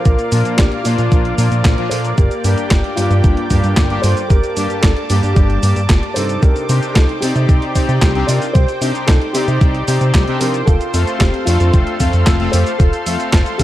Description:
italo disco; 113 BPM; 4/4; straight; A4 = 440 Hz
dark concert grand piano; melody; 0.0-13.6 s; C4 to D5; -22 LUFS; equal; tape echo, shimmer reverb
lush unison pad; sustained chords; 0.0-13.6 s; Bb3 to D6; -24 LUFS; equal; chorus, shimmer reverb
chorused synth bass; bass; 0.1-13.6 s; F1 to C3; -16 LUFS; equal
clean 12-bit digital drum machine; drums; 0.1-13.6 s; cabasa, handclaps, hi-hat, snare drum; -21 LUFS; equal; overdrive
electronic kick drum; drums; 0.1-13.6 s; -13 LUFS; equal; overdrive
analog synth brass; stabs; 0.3-13.6 s; G2 to D5; -22 LUFS; left 2 dB; chorus, vintage 12-bit sampler grit, shimmer reverb
light reverb, digital ambience; dark, warm production; -12 LUFS; side -14 dB against mid
0.0-13.6 A section
0.0 Bb; 2.2 Gm; 6.4 Cmadd9; 10.7 F

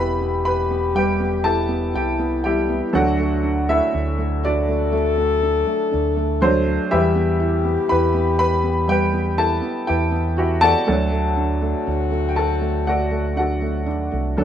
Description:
acoustic folk-pop ballad; 60 BPM; 4/4; straight; E minor; A4 = 440 Hz
clear upright piano; melody; 0.0-14.4 s; D2 to B5; -21 LUFS; equal
mellow French horn; second line; 0.0-14.4 s; D4 to A4; -24 LUFS; left 6 dB
felt-muted upright piano; arpeggios; 0.0-14.4 s; G3 to F#4; -26 LUFS; right 4 dB
fingered electric bass; bass; 0.0-14.4 s; E1 to E2; -23 LUFS; equal
light reverb; minimal, uncompressed stereo recording; -17 LUFS; side -9 dB against mid
0.0-14.4 A section
0.0 Em; 2.9 D; 6.9 Emadd9; 10.9 D

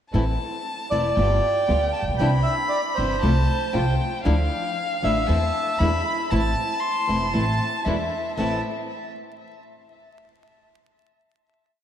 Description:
tango; 117 BPM; 4/4; rubato; A minor; A4 = 440 Hz
warm violin; second line; 0.1-8.6 s; E5 to C6; -28 LUFS; left 2 dB; tape echo
flamenco guitar; accompaniment; 0.1-8.6 s; A2 to F4; -28 LUFS; left 2 dB
dark studio string section; stabs; 0.1-8.6 s; F3 to A4; -32 LUFS; right 2 dB
upright bass; bass; 0.1-8.6 s; E1 to E2; -23 LUFS; equal
bandoneon; melody; 0.9-8.6 s; C5 to B5; -26 LUFS; right 1 dB; tape echo
wet lush hall reverb, RT60 2.6 s; dreamy mix soaked in reverb, vinyl crackle; -20 LUFS; side -10 dB against mid
0.1-8.4 A section; 8.4-10.4 final chord
0.1 Am; 1.2 G7; 2.2 Cadd9; 3.2 F/C; 4.3 Dmadd9; 5.3 Am/E; 5.8 E7; 6.3 Am; 7.9 E7; 8.4 Am

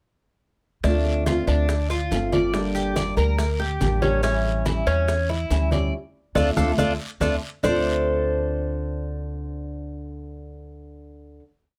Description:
latin, Cuban son and guajira; 141 BPM; 4/4; straight; D minor; A4 = 439 Hz
flamenco guitar; accompaniment; 0.8-11.5 s; D3 to G4; -30 LUFS; equal
Cuban tres; arpeggios; 0.8-11.4 s; C#4 to D5; -28 LUFS; equal
upright bass; bass; 0.8-11.4 s; G1 to E2; -28 LUFS; equal
bongos; percussion; 0.8-7.7 s; -36 LUFS; equal
congas; percussion; 0.8-7.7 s; -32 LUFS; equal
guiro; percussion; 0.8-7.7 s; -41 LUFS; equal
maracas; percussion; 0.8-7.7 s; -44 LUFS; equal
light reverb; close, detailed microphones; -23 LUFS; mono
0.8-7.6 A section; 7.6-11.0 final chord
band accent 5.9-7.6; drum fill 7.0-7.6
0.8 Dm7; 2.5 Gm; 4.2 A7; 5.9 Dm7

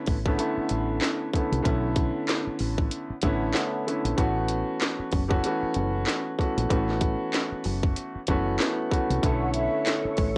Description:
hip hop, boom-bap hip-hop; 95 BPM; 4/4; swing 57% on 16ths; B minor; A4 = 439 Hz
clear concert grand piano; accompaniment; 0.0-10.3 s; D3 to F#4; -30 LUFS; equal; high-pass filter, low-pass filter, cassette tape
deep dub fingered electric bass; bass; 0.1-10.4 s; F#1 to C2; -31 LUFS; equal; transformer saturation
drum and bass drum kit; drums; 0.1-10.3 s; handclaps, hi-hat, kick drum, snare drum; -29 LUFS; equal; cassette tape
percussive tonewheel organ; sustained chords; 9.2-10.4 s; A4 to C#6; -33 LUFS; equal; chorus vibrato, slow rotary speaker, high-pass filter, low-pass filter, cassette tape
breathy mellow concert flute; melody; 9.4-10.0 s; E5 to F#5; -33 LUFS; equal; high-pass filter, low-pass filter, cassette tape, tape echo
light reverb; home recording on cassette; -26 LUFS; mono
0.0-10.4 A section
0.0 Bm11; 4.2 A69; 9.2 Bm11

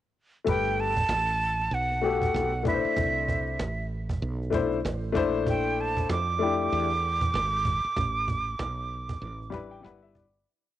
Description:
hip hop, jazz-hop; 96 BPM; 4/4; swing 61% on 16ths; G major; A4 = 440 Hz
warm upright piano; accompaniment; 0.4-10.4 s; G3 to B5; -28 LUFS; left 6 dB; cassette tape
breathy bright jazz flute; melody; 0.5-9.8 s; E5 to D6; -28 LUFS; right 3 dB
woody fretless electric bass; bass; 0.5-10.4 s; G1 to F2; -32 LUFS; right 1 dB
cajon; drums; 0.5-10.4 s; -32 LUFS; right 2 dB; cassette tape
light reverb, small room ambience; home recording on cassette; -25 LUFS; side -12 dB against mid
0.5-10.5 A section
fade-out 8.0-10.5; upright piano fill 9.2-10.5
0.5 Gmaj9; 3.0 C69; 5.2 Bbmaj9#11; 8.0 Asus2; 9.8 G6

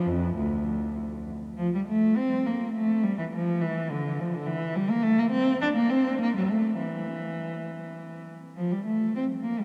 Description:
classical, baroque-style suite movement for unaccompanied cello; 102 BPM; 3/4; rubato; D minor; A4 = 440 Hz
warm cello; solo; 0.0-9.6 s; D2 to D4; -27 LUFS; equal
wet cathedral reverb, RT60 5.2 s; in a vast, echoing space; -27 LUFS; mono
0.0-1.6 A section; 1.6-9.6 B section

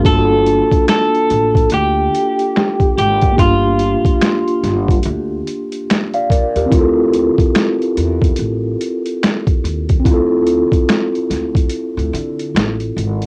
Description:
lo-fi hip hop; 72 BPM; 4/4; swing 61% on 16ths; G minor; A4 = 439 Hz
mellow tine electric piano; accompaniment; 0.0-13.3 s; Bb3 to F5; -19 LUFS; equal; cassette tape
upright bass; bass; 0.0-13.3 s; G1 to D3; -23 LUFS; equal; transformer saturation
boom bap sampler-style drum kit; drums; 0.0-13.3 s; finger snaps, hi-hat, kick drum, snare drum; -18 LUFS; equal; overdrive, cassette tape
electric guitar through a small old amp; melody; 0.1-5.0 s; F4 to A4; -18 LUFS; equal; cassette tape
moderate booth ambience, RT60 0.2 s; home recording on cassette; -15 LUFS; mono
0.0-13.3 A section
0.0 Gm9; 6.7 Dm9

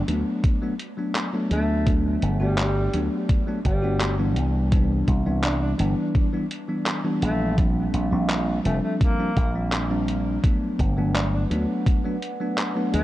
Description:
vaporwave; 84 BPM; 4/4; straight; G major; A4 = 439 Hz
bell-like tine electric piano; accompaniment; 0.0-13.0 s; E3 to F#4; -26 LUFS; equal; wide subtle chorus, tape echo
slap bass with an envelope filter; bass; 0.1-13.0 s; F1 to D2; -24 LUFS; equal
detuned 8-bit digital drum machine; drums; 0.1-13.0 s; handclaps, hi-hat; -30 LUFS; equal; vintage 12-bit sampler grit
electronic kick drum; drums; 0.4-12.0 s; -21 LUFS; equal; vintage 12-bit sampler grit
warm alto saxophone; melody; 1.5-13.0 s; G3 to D4; -32 LUFS; equal; tape echo
warbly tape-like pad; sustained chords; 10.4-13.0 s; B4 to F#5; -35 LUFS; right 3 dB; chorus, built-in reverb, vintage 12-bit sampler grit
light reverb; dark, warm production, cassette tape; -21 LUFS; side -15 dB against mid
0.0-13.0 A section
0.0 Gmaj7; 4.4 Cmaj7; 7.6 Bb69; 10.4 Gmaj7

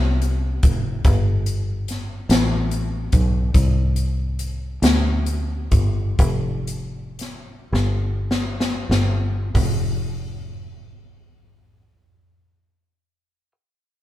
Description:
slow gospel; 30-48 BPM (dotted quarters); 6/8; straight; F major; A4 = 440 Hz
fingered electric bass; bass; 0.0-13.5 s; F1 to D2; -21 LUFS; equal
swinging big-band drum kit; drums; 0.2-9.9 s; hi-hat, kick drum, snare drum, toms; -21 LUFS; equal
moderate studio reverb, RT60 0.5 s; band playing live in one room; -18 LUFS; side -14 dB against mid
0.0-9.5 A section; 9.5-13.6 B section
slowing down 3.5-9.5; drum fill 7.7-9.5

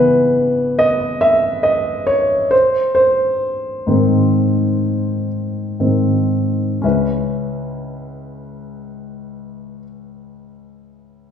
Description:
pop; 57-72 BPM; 4/4; straight; C# minor; A4 = 440 Hz
warm concert grand piano; accompaniment; 0.0-11.3 s; C#2 to E5; -15 LUFS; equal
wet large studio reverb, RT60 1.3 s; band playing live in one room; -14 LUFS; side -8 dB against mid
0.0-6.8 A section; 6.8-11.1 B section
slowing down 0.0-6.8; grand piano solo 0.0-6.8
0.0 C#m7; 2.5 G#; 6.8 C#m7

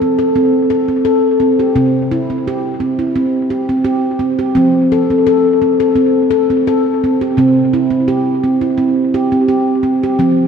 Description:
world meditative, meditative tuned percussion; 85 BPM; 4/4; straight; C major; A4 = 439 Hz
handpan; solo; 0.0-10.5 s; C3 to A4; -11 LUFS; equal; analog delay
wet lush hall reverb, RT60 3.0 s; dreamy mix soaked in reverb; -11 LUFS; side -6 dB against mid
0.0-10.5 A section
0.0 F; 1.8 C; 4.6 F; 7.4 C

